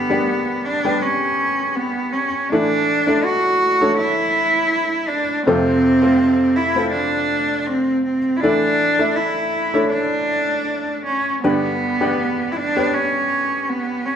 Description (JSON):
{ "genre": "pop", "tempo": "80 BPM", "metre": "4/4", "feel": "straight", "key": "unclear", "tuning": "A4 = 441 Hz", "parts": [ { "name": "warm cello", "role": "melody", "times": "0.0-14.2 s", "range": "B3 to F#4", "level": "-18 LUFS", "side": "right 1 dB", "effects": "none" }, { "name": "felt-muted upright piano", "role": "accompaniment", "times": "0.0-14.2 s", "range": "F2 to E5", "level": "-21 LUFS", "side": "left 1 dB", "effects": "none" } ], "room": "wet stone room reverb, RT60 1.1 s", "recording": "band playing live in one room", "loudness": "-16 LUFS", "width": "side -8 dB against mid", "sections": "0.0-14.2 A section", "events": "none", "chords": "0.0 G; 2.5 Asus4; 5.5 F; 8.4 Asus4; 11.4 G" }